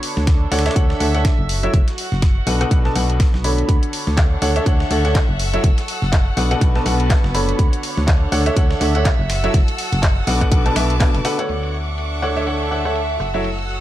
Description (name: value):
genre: piano house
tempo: 123 BPM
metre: 4/4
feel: swing 58% on 16ths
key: D major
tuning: A4 = 440 Hz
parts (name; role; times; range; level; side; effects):
- bright upright piano; riff; 0.0-13.5 s; B2 to B5; -22 LUFS; equal; sidechain pumping, ping-pong delay
- dusty soul sampler-style drum kit; drums; 0.0-11.4 s; hi-hat, snare drum; -32 LUFS; right 1 dB; high-pass filter on hats, high-pass filter on snare
- house drum kit; drums; 0.0-13.8 s; handclaps, hi-hat, rim click, shaker; -26 LUFS; left 1 dB; low-pass filter on hats, low-pass filter on snare, low-pass filter on perc
- dark chamber string section; texture; 0.0-13.8 s; B3 to F#5; -27 LUFS; right 2 dB; sidechain pumping
- solid FM bass; bass; 0.2-13.8 s; F#1 to D2; -20 LUFS; equal; sidechain pumping
- electronic kick drum; drums; 0.3-11.1 s; none; -16 LUFS; equal; none
- rich chamber violin section; sustained chords; 3.7-13.8 s; A4 to E6; -29 LUFS; left 1 dB; sidechain pumping
room: little or no reverb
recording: dark, warm production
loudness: -15 LUFS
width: side -13 dB against mid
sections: 0.0-11.5 A section; 11.5-13.8 B section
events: none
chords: 0.0 Dmaj7; 1.5 F#m7; 2.5 Bm7; 3.7 Dmaj7; 5.4 F#m7; 6.4 Bm7; 7.6 Dmaj7; 9.3 F#m7; 10.3 Bm7; 11.5 Dmaj7; 13.2 F#m7